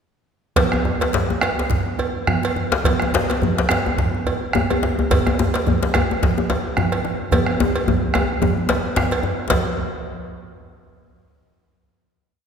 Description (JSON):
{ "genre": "west african traditional, West African drum ensemble", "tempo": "108 BPM", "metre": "4/4", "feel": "swing 56% on 16ths", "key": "none", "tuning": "none", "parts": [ { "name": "bombo", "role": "percussion", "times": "0.6-9.8 s", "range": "none", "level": "-24 LUFS", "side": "right 2 dB", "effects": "none" }, { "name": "congas", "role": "percussion", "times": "0.6-9.8 s", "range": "none", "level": "-26 LUFS", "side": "right 4 dB", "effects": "none" }, { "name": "cowbell", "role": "percussion", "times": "0.6-9.8 s", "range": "none", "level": "-26 LUFS", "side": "right 3 dB", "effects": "none" }, { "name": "djembe", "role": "percussion", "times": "0.6-9.8 s", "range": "none", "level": "-25 LUFS", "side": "left 2 dB", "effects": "none" }, { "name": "djembe", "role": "percussion", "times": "0.6-9.8 s", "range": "none", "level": "-22 LUFS", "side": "left 3 dB", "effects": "none" } ], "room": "wet concert hall reverb, RT60 2.4 s", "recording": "recorded in a church or concert hall", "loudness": "-18 LUFS", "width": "side -7 dB against mid", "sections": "0.6-9.5 A section; 9.5-11.6 final hit", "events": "speeding up 0.6-11.6; drum fill 7.3-9.5", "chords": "none" }